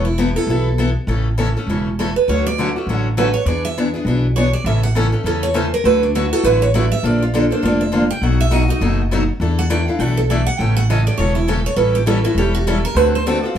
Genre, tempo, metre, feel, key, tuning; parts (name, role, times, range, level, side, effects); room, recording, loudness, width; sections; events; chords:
acoustic string swing (jazz manouche); 202 BPM; 4/4; swing 58% on 8ths; D major; A4 = 442 Hz
picked steel-string acoustic guitar; second line; 0.0-13.6 s; D4 to G5; -20 LUFS; right 4 dB
picked steel-string acoustic guitar; accompaniment; 0.0-13.6 s; B2 to A4; -20 LUFS; left 2 dB
upright bass; bass; 0.0-13.6 s; E1 to E2; -18 LUFS; equal
wet studio ambience, RT60 0.5 s; heard from further back in the room; -15 LUFS; side -9 dB against mid
0.0-7.0 A section; 7.0-13.6 A section
steel-string acoustic guitar solo 0.0-13.6
0.0 Esus4; 1.1 A; 2.3 Dmaj7; 3.5 E7; 4.7 A; 5.8 Dadd9; 7.0 Bbmaj7; 8.2 B7; 9.4 E7sus4; 10.6 A; 11.8 A7; 13.0 D7